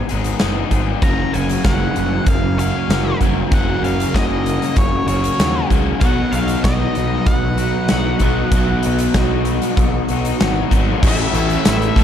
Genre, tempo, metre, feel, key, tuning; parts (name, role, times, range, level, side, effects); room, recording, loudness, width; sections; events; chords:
rock, shoegaze and dream pop; 96 BPM; 4/4; straight; F# major; A4 = 438 Hz
octave-fuzz lead guitar; melody; 0.0-12.0 s; C#5 to A#5; -25 LUFS; equal; distortion, slapback echo
crunchy overdriven guitar; riff; 0.0-12.0 s; F#2 to A4; -24 LUFS; left 10 dB; lush chorus
overdriven semi-hollow guitar; riff; 0.0-12.0 s; F#2 to A4; -26 LUFS; right 9 dB; reverse reverb
fuzz picked electric bass; bass; 0.1-12.0 s; F#1 to D#2; -21 LUFS; equal; overdrive
huge arena drum kit; drums; 0.1-12.0 s; crash cymbal, hi-hat, kick drum, snare drum; -19 LUFS; equal
soft string machine; sustained chords; 1.0-12.0 s; F#4 to C#6; -29 LUFS; equal; phaser, ensemble chorus
crunchy overdriven guitar; riff; 1.0-12.0 s; F#2 to B3; -24 LUFS; equal
tambourine; percussion; 11.7-11.8 s; -33 LUFS; right 5 dB
studio reverb; dark, warm production; -14 LUFS; side -9 dB against mid
0.0-11.0 A section; 11.0-12.0 B section
0.0 G#m; 1.0 F#add9; 6.0 B; 11.0 A